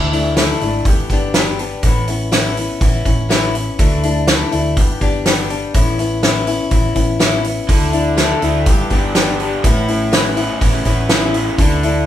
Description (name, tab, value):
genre	folk rock and heartland rock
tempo	123 BPM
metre	4/4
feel	straight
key	A major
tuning	A4 = 440 Hz
part	picked old ladder-braced acoustic guitar	accompaniment	0.0-12.1 s	G2 to G4	-19 LUFS	left 5 dB	none
part	hollow-body short-scale fingered electric bass	bass	0.0-12.1 s	G1 to D2	-21 LUFS	right 1 dB	none
part	loose indie drum kit	drums	0.1-11.9 s	hi-hat, kick drum, snare drum	-16 LUFS	equal	none
part	raw garage guitar	riff	7.7-12.1 s	G2 to D4	-21 LUFS	right 3 dB	overdrive
room	moderate large studio reverb, RT60 0.8 s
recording	band playing live in one room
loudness	-13 LUFS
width	side -11 dB against mid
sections	0.0-12.1 A section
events	none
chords	0.0 Dsus2; 0.9 G; 1.8 Aadd9; 3.8 Dsus2; 4.8 G; 5.7 Aadd9; 7.7 Dsus2; 8.7 G; 9.6 Aadd9